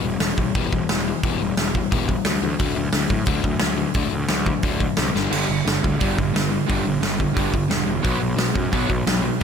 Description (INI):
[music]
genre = punk rock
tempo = 176 BPM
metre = 4/4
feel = straight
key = E minor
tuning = A4 = 436 Hz
[part]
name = overdriven semi-hollow guitar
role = riff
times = 0.0-9.4 s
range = G2 to B3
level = -25 LUFS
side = left 12 dB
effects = none
[part]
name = fuzz picked electric bass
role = bass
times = 0.0-9.3 s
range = E1 to A2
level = -26 LUFS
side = right 1 dB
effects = overdrive
[part]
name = big rock drum kit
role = drums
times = 0.2-9.4 s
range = crash cymbal, hi-hat, kick drum, snare drum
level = -22 LUFS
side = right 1 dB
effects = none
[part]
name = distorted electric guitar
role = riff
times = 5.3-9.4 s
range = G2 to B3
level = -25 LUFS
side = right 12 dB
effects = distortion
[sound]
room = little or no reverb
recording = none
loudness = -19 LUFS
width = side -7 dB against mid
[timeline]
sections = 0.0-9.4 A section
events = drum fill 5.2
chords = 0.0 Em; 2.6 D; 5.2 G5; 8.1 B5